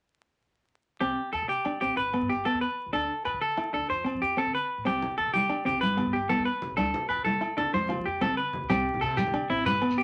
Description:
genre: highlife guitar band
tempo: 125 BPM (dotted quarters)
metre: 12/8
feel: straight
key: C major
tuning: A4 = 440 Hz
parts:
  - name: clean electric guitar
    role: accompaniment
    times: 1.0-10.0 s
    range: B3 to F4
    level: -34 LUFS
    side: equal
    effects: harmonic tremolo
  - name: semi-hollow electric guitar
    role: arpeggios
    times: 1.0-10.0 s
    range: E4 to C5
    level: -30 LUFS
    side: equal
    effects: none
  - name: upright bass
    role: bass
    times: 1.0-10.0 s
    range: G1 to F3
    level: -44 LUFS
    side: equal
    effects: none
  - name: agogo bells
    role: percussion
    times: 1.0-10.0 s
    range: none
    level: -44 LUFS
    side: equal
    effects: none
  - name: congas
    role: percussion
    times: 4.9-10.0 s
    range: none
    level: -35 LUFS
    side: equal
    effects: none
  - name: shekere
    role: percussion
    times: 8.7-10.0 s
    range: none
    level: -40 LUFS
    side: equal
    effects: none
room: wet studio reverb, RT60 0.5 s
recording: vinyl crackle, nothing above 10.6 kHz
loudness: -28 LUFS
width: mono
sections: 1.0-8.7 A section; 8.7-10.0 B section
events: none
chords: 1.0 C5; 2.0 G; 2.9 D5; 3.9 Fadd9; 4.9 C5; 5.8 G; 6.8 D5; 7.7 Fadd9; 8.7 C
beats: | 1.01 1.49 1.98 2.46 | 2.94 3.42 3.90 4.38 | 4.86 5.34 5.82 6.30 | 6.78 7.26 7.74 8.22 | 8.70 9.18 9.65

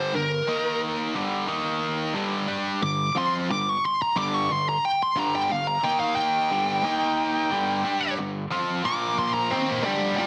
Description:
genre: rock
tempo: 90 BPM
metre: 4/4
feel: straight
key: G minor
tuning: A4 = 443 Hz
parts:
  - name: high-gain lead guitar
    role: melody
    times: 0.0-10.3 s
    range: Bb4 to D6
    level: -27 LUFS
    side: equal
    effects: distortion, slapback echo
  - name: high-gain distorted guitar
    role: riff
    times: 0.0-10.3 s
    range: G2 to G4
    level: -28 LUFS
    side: equal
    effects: distortion
room: moderate large studio reverb, RT60 1.1 s, digital ambience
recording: heavily compressed radio sound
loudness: -25 LUFS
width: mono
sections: 0.0-10.3 A section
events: lead electric guitar solo 0.0-10.3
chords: 0.5 Eb5; 1.1 G5; 1.5 Eb5; 2.1 G5; 5.8 Eb5; 6.5 G5; 6.8 Eb5; 7.5 G5; 8.8 Bb5; 9.5 Gm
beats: 0.47 1.14 1.81 | 2.48 3.15 3.82 4.49 | 5.16 5.83 6.50 7.17 | 7.84 8.51 9.18 9.85

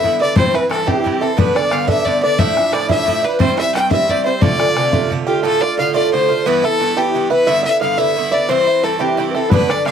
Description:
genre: celtic folk, Celtic jig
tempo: 118 BPM (dotted quarters)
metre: 6/8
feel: straight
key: D dorian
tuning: A4 = 440 Hz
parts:
  - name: bright fiddle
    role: melody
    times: 0.0-9.9 s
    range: G4 to G5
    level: -18 LUFS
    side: left 1 dB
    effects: none
  - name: bluegrass banjo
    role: second line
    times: 0.0-9.9 s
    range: G4 to G5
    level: -25 LUFS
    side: right 4 dB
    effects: none
  - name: mellow baroque flute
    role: second line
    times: 0.0-9.9 s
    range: G4 to G5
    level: -21 LUFS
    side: left 11 dB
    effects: none
  - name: Irish bouzouki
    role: accompaniment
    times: 0.0-9.9 s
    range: G2 to F4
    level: -19 LUFS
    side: right 10 dB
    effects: none
  - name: bodhran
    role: percussion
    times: 0.0-5.2, 9.5-9.9 s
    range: none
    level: -18 LUFS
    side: left 3 dB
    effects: none
room: little or no reverb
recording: dry, close 1970s-style studio recording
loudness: -13 LUFS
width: side -8 dB against mid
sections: 0.0-5.4 A section; 5.4-9.9 A section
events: none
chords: 0.4 C; 1.4 G; 2.4 Dmadd9; 3.4 C; 4.4 Dm7; 5.4 Dm; 6.5 Em; 7.5 G6; 8.5 C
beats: | 0.37 0.87 | 1.38 1.89 | 2.39 2.90 | 3.40 3.91 | 4.42 4.93 | 5.43 5.94 | 6.45 6.96 | 7.47 7.98 | 8.49 9.00 | 9.51

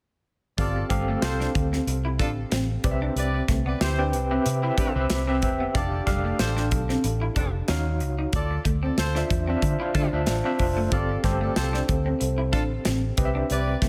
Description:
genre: polished 1980s jazz-funk pop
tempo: 93 BPM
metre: 4/4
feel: swing 54% on 16ths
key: unclear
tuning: A4 = 441 Hz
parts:
  - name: warm horn section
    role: second line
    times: 0.6-13.8 s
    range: A3 to D5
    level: -35 LUFS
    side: equal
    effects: none
  - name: overdriven tine electric piano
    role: accompaniment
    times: 0.6-13.9 s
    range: C4 to G5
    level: -31 LUFS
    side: equal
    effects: fast tremolo, subtle chorus
  - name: vintage muted fingered electric bass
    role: bass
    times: 0.6-13.9 s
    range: E1 to D3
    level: -29 LUFS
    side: equal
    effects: none
  - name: modern studio drum kit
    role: drums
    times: 0.6-13.9 s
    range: hi-hat, kick drum, snare drum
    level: -30 LUFS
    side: equal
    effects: none
  - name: electric guitar at the edge of break-up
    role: riff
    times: 0.8-13.9 s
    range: G3 to E4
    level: -34 LUFS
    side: equal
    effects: lush chorus
room: light reverb, small room ambience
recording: none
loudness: -25 LUFS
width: mono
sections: 0.6-13.9 A section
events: none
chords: 0.6 G9sus4; 2.8 Cmaj7; 5.7 F69; 7.7 Ebm9; 8.3 Dm9; 10.9 G9sus4; 13.2 Cmaj7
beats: | 0.58 1.23 1.87 2.52 | 3.16 3.81 4.46 5.10 | 5.75 6.39 7.04 7.68 | 8.33 8.98 9.62 10.27 | 10.91 11.56 12.21 12.85 | 13.50

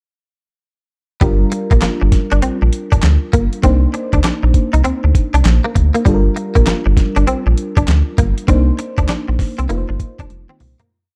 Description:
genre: R&B, new jack swing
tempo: 99 BPM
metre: 4/4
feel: swing 64% on 16ths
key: G minor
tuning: A4 = 439 Hz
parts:
  - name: FM electric piano with tremolo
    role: accompaniment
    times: 1.2-10.9 s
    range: G3 to C5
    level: -24 LUFS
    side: equal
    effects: none
  - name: direct-recorded clean electric guitar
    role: riff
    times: 1.2-10.9 s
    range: G3 to Eb4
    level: -23 LUFS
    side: equal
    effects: ensemble chorus
  - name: round analog bass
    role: bass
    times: 1.2-10.8 s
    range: F1 to D2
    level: -16 LUFS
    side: equal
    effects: none
  - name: dusty soul sampler-style drum kit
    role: drums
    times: 1.2-10.9 s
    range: handclaps, hi-hat, kick drum, snare drum, toms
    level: -18 LUFS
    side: equal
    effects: none
room: digital ambience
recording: dark, warm production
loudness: -15 LUFS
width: mono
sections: 1.2-10.9 verse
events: fade-out 8.5-10.9; drum fill 10.3-10.9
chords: 1.2 Gm7; 3.6 Cm9; 6.1 Gm7; 8.5 Cm9; 9.7 F7sus4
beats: | 1.21 1.82 2.42 3.03 | 3.63 4.24 4.85 5.45 | 6.06 6.66 7.27 7.88 | 8.48 9.09 9.70 10.30

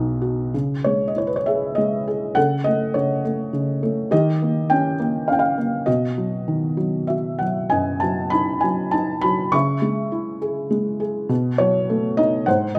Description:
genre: classical, lyrical solo piano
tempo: 101 BPM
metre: 3/4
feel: rubato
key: C# minor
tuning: A4 = 443 Hz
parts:
  - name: felt-muted upright piano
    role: solo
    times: 0.0-12.8 s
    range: B1 to C#6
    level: -21 LUFS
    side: equal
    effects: none
room: light reverb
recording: close, detailed microphones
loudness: -21 LUFS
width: mono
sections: 0.5-12.8 A section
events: none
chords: 0.0 B; 0.5 C#madd9; 2.4 F#m6/C#; 4.1 D#7; 5.9 B; 9.5 C#m; 11.3 B7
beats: | 0.54 1.16 1.77 | 2.37 2.95 3.53 | 4.12 4.70 5.28 | 5.87 6.47 7.09 | 7.72 8.33 8.94 | 9.54 10.13 10.72 | 11.30 11.89 12.48

